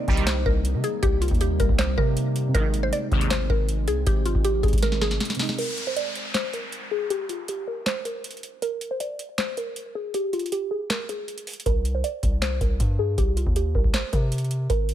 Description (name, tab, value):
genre	hip hop, trap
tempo	158 BPM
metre	4/4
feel	half-time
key	C minor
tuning	A4 = 439 Hz
part	mallet-like synth pluck	melody	0.0-14.9 s	F4 to D5	-28 LUFS	equal	chorus, phaser, low-pass filter
part	soft electric-piano-like synth keys	accompaniment	0.0-5.6 s	C3 to Eb4	-34 LUFS	right 3 dB	chorus, low-pass filter
part	deep dark ambient pad	sustained chords	0.0-5.6 s	C3 to Eb4	-34 LUFS	equal	chorus, built-in reverb
part	resonant sweep polysynth	stabs	0.1-0.2, 2.5-3.3 s	Eb2 to G3	-31 LUFS	equal	chorus, phaser
part	long sustained 808-style bass	bass	0.1-5.2, 11.7-14.9 s	Ab1 to C3	-25 LUFS	equal	none
part	booming analog drum machine	drums	0.1-14.9 s	crash cymbal, handclaps, hi-hat, kick drum, snare drum	-25 LUFS	equal	none
part	downlifter	sound effects	5.6-8.6 s	none	-34 LUFS	equal	none
room	little or no reverb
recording	none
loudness	-22 LUFS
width	side -11 dB against mid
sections	0.0-5.6 A section; 5.6-14.9 B section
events	drum fill 4.8-5.6; break 5.6-11.7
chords	0.0 Cm7; 2.5 Ab; 5.6 N.C.; 11.7 C7(no3)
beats	0.27 0.65 | 1.03 1.41 1.79 2.17 | 2.55 2.93 3.31 3.69 | 4.07 4.45 4.83 5.21 | 5.58 5.96 6.34 6.72 | 7.10 7.48 7.86 8.24 | 8.62 9.00 9.38 9.76 | 10.14 10.52 10.90 11.28 | 11.66 12.04 12.42 12.80 | 13.18 13.56 13.94 14.32 | 14.70